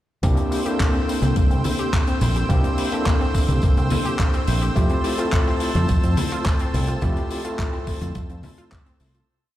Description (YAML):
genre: nu-disco, nu disco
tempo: 106 BPM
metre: 4/4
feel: straight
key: C mixolydian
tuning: A4 = 440 Hz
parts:
  - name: overdriven tine electric piano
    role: accompaniment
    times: 0.2-9.3 s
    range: A3 to A4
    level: -26 LUFS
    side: left 1 dB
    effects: fast tremolo, sidechain pumping, ping-pong delay
  - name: lush unison pad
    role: sustained chords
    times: 0.2-9.3 s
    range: C5 to E6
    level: -30 LUFS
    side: right 2 dB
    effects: chorus, sidechain pumping
  - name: wide unison pluck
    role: arpeggios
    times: 0.2-9.2 s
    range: A3 to G4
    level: -32 LUFS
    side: left 2 dB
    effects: sidechain pumping, dub echo
  - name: fingered electric bass with an envelope filter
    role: bass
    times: 0.2-9.2 s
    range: Bb1 to F2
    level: -22 LUFS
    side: equal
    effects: none
  - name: electronic kick drum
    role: drums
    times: 0.2-8.8 s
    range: none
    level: -21 LUFS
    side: equal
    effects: none
  - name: tight funk drum kit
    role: drums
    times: 0.2-9.3 s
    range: handclaps, hi-hat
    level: -31 LUFS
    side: left 1 dB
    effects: none
  - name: tambourine and congas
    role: percussion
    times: 0.2-9.3 s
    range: none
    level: -30 LUFS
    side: left 1 dB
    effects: none
room: light reverb, studio ambience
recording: played on a big sound system in a bare room, large studio reverb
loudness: -18 LUFS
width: side -14 dB against mid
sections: 0.2-9.3 drop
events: drop 0.2-9.3; fade-out 6.3-9.3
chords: 0.2 C7; 4.8 Fmaj7